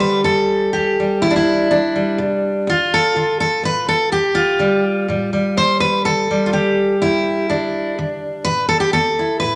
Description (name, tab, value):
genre	folk, solo fingerstyle acoustic guitar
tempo	124 BPM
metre	3/4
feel	straight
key	D dorian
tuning	A4 = 442 Hz
part	fingerpicked steel-string acoustic guitar	solo	0.0-9.6 s	D2 to C5	-17 LUFS	equal	none
room	wet large studio reverb, RT60 1.2 s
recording	none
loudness	-17 LUFS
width	mono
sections	0.0-9.6 A section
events	none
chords	0.0 Csus2; 2.7 Dm; 5.6 Gsus2; 8.5 Asus2